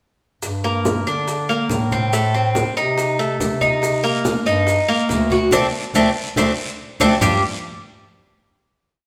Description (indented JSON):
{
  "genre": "latin, Cuban son and guajira",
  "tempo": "141 BPM",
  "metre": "4/4",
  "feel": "straight",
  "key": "G minor",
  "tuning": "A4 = 439 Hz",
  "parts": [
    { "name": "warm bass clarinet", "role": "bass", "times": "0.4-7.4 s", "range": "D2 to D3", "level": "-25 LUFS", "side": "equal", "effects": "none" },
    { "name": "bongos", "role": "percussion", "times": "0.4-7.3 s", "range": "none", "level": "-32 LUFS", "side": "equal", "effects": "none" },
    { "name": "congas", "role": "percussion", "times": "0.4-7.3 s", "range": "none", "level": "-29 LUFS", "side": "equal", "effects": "none" },
    { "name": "maracas", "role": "percussion", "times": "0.4-7.3 s", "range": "none", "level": "-36 LUFS", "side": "equal", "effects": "none" },
    { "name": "Cuban tres", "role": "arpeggios", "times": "0.6-7.4 s", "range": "G3 to G4", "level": "-21 LUFS", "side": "equal", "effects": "none" },
    { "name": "guiro", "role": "percussion", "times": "3.8-7.3 s", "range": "none", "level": "-35 LUFS", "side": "equal", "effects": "none" }
  ],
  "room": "wet stone room reverb, RT60 1.4 s",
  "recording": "band playing live in one room",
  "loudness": "-19 LUFS",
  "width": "mono",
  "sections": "0.4-7.2 verse; 7.2-8.9 final chord",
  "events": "band accent 5.5-7.2",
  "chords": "0.4 Gmadd9; 2.1 Cm6; 3.8 Cm7; 5.5 D5; 7.2 G5",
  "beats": "| 0.43 0.85 1.28 1.70 | 2.13 2.55 2.98 3.40 | 3.83 4.25 4.67 5.10 | 5.52 5.95 6.37 6.79 | 7.22"
}